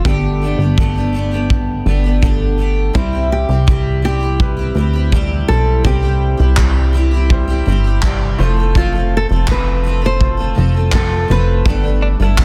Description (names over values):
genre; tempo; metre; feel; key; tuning
acoustic pop; 83 BPM; 4/4; straight; C major; A4 = 441 Hz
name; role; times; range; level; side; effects
nylon-string guitar; melody; 0.0-12.4 s; E4 to C5; -24 LUFS; equal; none
picked steel-string acoustic guitar; accompaniment; 0.0-12.4 s; G2 to A4; -24 LUFS; equal; double-tracked
plucky analog bass; bass; 0.1-12.4 s; F1 to D2; -17 LUFS; equal; none
loose indie drum kit; drums; 0.1-12.4 s; handclaps, kick drum; -19 LUFS; equal; none
clear concert grand piano; accompaniment; 2.9-12.4 s; G3 to C5; -30 LUFS; equal; none
direct-recorded clean electric guitar; second line; 12.0-12.4 s; D4 to E4; -26 LUFS; equal; none
room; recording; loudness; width
light reverb, studio ambience; dense, heavily limited modern master; -15 LUFS; mono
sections
0.0-3.0 A section; 3.0-12.4 B section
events
none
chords
0.1 Gadd9; 3.0 C; 8.4 F; 11.7 Gadd9